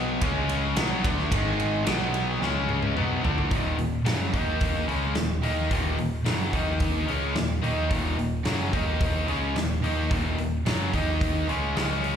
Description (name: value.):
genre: hard rock.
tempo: 109 BPM.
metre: 4/4.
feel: straight.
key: Eb minor.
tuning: A4 = 442 Hz.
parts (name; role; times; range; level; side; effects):
distorted electric guitar; riff; 0.0-12.2 s; Eb2 to Eb4; -28 LUFS; left 8 dB; overdrive, slapback echo.
overdriven electric guitar; riff; 0.0-12.2 s; Eb2 to Eb4; -30 LUFS; right 10 dB; slapback echo.
picked electric bass; bass; 0.0-12.2 s; Eb1 to Eb2; -29 LUFS; equal; none.
huge arena drum kit; drums; 0.2-12.2 s; hi-hat, kick drum, ride cymbal, snare drum, toms; -29 LUFS; equal; none.
room: light reverb, small room ambience.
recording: live gig heard through the venue's PA, club reverb.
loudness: -23 LUFS.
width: side -8 dB against mid.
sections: 0.0-3.5 A section; 3.5-12.2 B section.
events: drum fill 2.4-3.5.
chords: 0.2 Db5; 0.8 Ab5; 1.9 B5; 2.4 Db5; 3.0 Bm7; 3.5 Ebm.